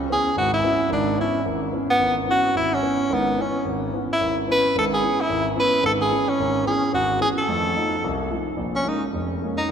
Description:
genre	jazz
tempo	219 BPM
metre	4/4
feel	swing 59% on 8ths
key	C# minor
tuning	A4 = 440 Hz
part	warm concert grand piano	accompaniment	0.0-9.7 s	F1 to Eb4	-24 LUFS	right 1 dB	none
part	bright tenor saxophone	melody	0.1-9.7 s	B3 to B4	-21 LUFS	equal	none
room	wet cathedral reverb, RT60 4.4 s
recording	recorded in a church or concert hall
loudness	-19 LUFS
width	side -8 dB against mid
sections	0.0-8.6 A section; 8.6-9.7 B section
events	tenor saxophone solo 8.6-9.7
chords	0.0 C#m7; 7.5 F7; 8.6 Bbm7

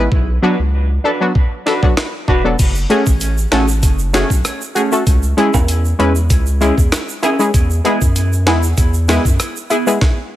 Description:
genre	dancehall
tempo	97 BPM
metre	4/4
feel	straight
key	F# minor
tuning	A4 = 438 Hz
part	synth brass stab	accompaniment	0.0-10.0 s	F#3 to B4	-18 LUFS	left 1 dB	chorus
part	saturated sub bass	bass	0.0-9.4 s	E1 to F#2	-16 LUFS	equal	none
part	breakbeat sampler-style drum kit	drums	0.1-10.2 s	crash cymbal, hi-hat, kick drum, rim click, snare drum	-16 LUFS	equal	none
part	mellow electric guitar	arpeggios	0.4-9.8 s	A3 to B4	-22 LUFS	right 1 dB	lush chorus, digital delay
part	egg shaker and timbales	percussion	2.6-10.0 s	none	-26 LUFS	right 6 dB	none
room	digital ambience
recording	none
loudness	-12 LUFS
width	side -14 dB against mid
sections	0.0-2.6 A section; 2.6-10.4 B section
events	none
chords	0.1 Bm; 2.6 F#madd9; 5.1 C#m; 7.5 E

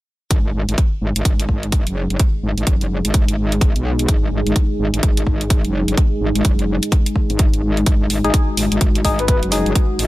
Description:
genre	bass house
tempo	127 BPM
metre	4/4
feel	swing 61% on 16ths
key	unclear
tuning	A4 = 439 Hz
part	dark analog pad	sustained chords	1.9-10.1 s	G#3 to G#4	-24 LUFS	equal	chorus, sidechain pumping
part	metallic wobble bass	bass	0.3-10.1 s	F#1 to B1	-20 LUFS	equal	chorus, tube saturation, sidechain pumping
part	electronic hi-hat	drums	0.3-10.1 s	none	-23 LUFS	equal	none
part	electronic kick drum	drums	0.3-9.9 s	none	-16 LUFS	equal	none
part	percussive organ stab	stabs	8.2-9.7 s	G#3 to G#4	-22 LUFS	left 3 dB	chorus, sidechain pumping, ping-pong delay
part	breathy flute-like synth lead	melody	9.2-9.4 s	B4	-24 LUFS	left 4 dB	chorus, ping-pong delay
room	digital ambience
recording	none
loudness	-15 LUFS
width	side -17 dB against mid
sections	0.3-10.1 A section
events	none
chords	0.3 G#5

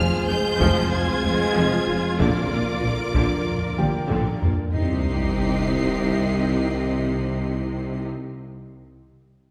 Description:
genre	cinematic, hybrid orchestral and electronic film score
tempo	94 BPM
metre	4/4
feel	straight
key	C minor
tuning	A4 = 440 Hz
part	rich studio violin section	melody	0.0-8.1 s	D6 to C7	-34 LUFS	equal	none
part	rich symphonic violin section	second line	0.0-8.1 s	G4 to Eb5	-34 LUFS	equal	none
part	warm symphonic viola section	accompaniment	0.0-8.1 s	D3 to F4	-32 LUFS	equal	none
part	dark French horn section	sustained chords	0.0-8.1 s	D3 to C4	-33 LUFS	equal	none
part	deep dark ambient pad	sustained chords	0.2-8.1 s	Eb3 to C5	-34 LUFS	equal	none
part	dark tuba	bass	0.0-8.1 s	F1 to C2	-31 LUFS	equal	none
part	rich symphonic cello section	bass	0.0-8.1 s	F2 to C3	-32 LUFS	equal	none
part	rich symphonic double bass section	bass	0.0-8.1 s	F1 to C2	-32 LUFS	equal	none
part	felt-muted upright piano	texture	0.0-4.8 s	G4 to Ab5	-38 LUFS	equal	none
part	taiko ensemble	drums	0.6-4.7 s	none	-29 LUFS	equal	none
part	sub drop	sound effects	4.7-8.8 s	none	-31 LUFS	equal	none
room	wet concert hall reverb, RT60 2.1 s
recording	recorded in a church or concert hall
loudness	-23 LUFS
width	mono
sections	0.0-4.7 A section; 4.7-7.3 B section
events	drum fill 3.8-4.7; impact 4.7-7.3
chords	0.0 Fm; 2.2 Bb; 4.7 Cm

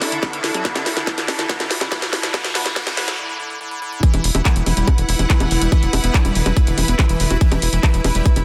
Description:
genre	psychedelic trance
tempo	142 BPM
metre	4/4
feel	straight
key	unclear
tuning	A4 = 439 Hz
part	evolving wavetable pad	sustained chords	0.0-8.4 s	E4	-31 LUFS	equal	chorus, built-in reverb, sidechain pumping
part	drum and bass drum kit	drums	0.0-8.4 s	bongos, handclaps, hi-hat, snare drum	-24 LUFS	equal	none
part	riser	sound effects	0.0-3.2 s	none	-30 LUFS	equal	none
part	clear symphonic string section	texture	0.0-8.4 s	D4 to F#5	-30 LUFS	equal	sidechain pumping
part	liquid acid bass	riff	0.1-8.4 s	D3 to F#4	-29 LUFS	equal	chorus, sidechain pumping, digital delay
part	resonant blip pluck	second line	0.2-6.7 s	B3 to D4	-36 LUFS	equal	none
part	electronic kick drum	drums	0.2-8.3 s	none	-17 LUFS	equal	none
part	tight sequencer bass	bass	4.1-8.4 s	E1	-22 LUFS	equal	none
room	little or no reverb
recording	dense, heavily limited modern master, high-pass filter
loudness	-18 LUFS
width	mono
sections	0.0-4.0 A section; 4.0-8.4 B section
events	build-up 0.0-4.0; drum fill 0.0-3.2; riser 0.0-3.2; break 3.2-4.0; drop 4.0-8.4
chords	0.0 D5; 4.0 E5

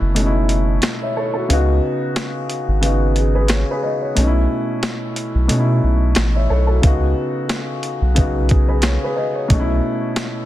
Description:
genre	hip hop, boom-bap hip-hop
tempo	90 BPM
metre	4/4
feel	swing 55% on 16ths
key	C# minor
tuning	A4 = 440 Hz
part	dark grand piano	accompaniment	0.0-10.5 s	B2 to E5	-20 LUFS	left 1 dB	high-pass filter, low-pass filter
part	warm sub bass	bass	0.0-9.8 s	F#1 to B2	-16 LUFS	equal	none
part	boom bap sampler-style drum kit	drums	0.2-10.3 s	hi-hat, kick drum, snare drum	-20 LUFS	equal	none
room	digital ambience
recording	dense, heavily limited modern master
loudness	-16 LUFS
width	side -14 dB against mid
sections	0.0-10.5 A section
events	break 0.0-6.8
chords	0.0 B9sus4; 1.5 C#9sus4; 4.2 B9sus4; 6.8 C#9sus4; 9.5 B9sus4

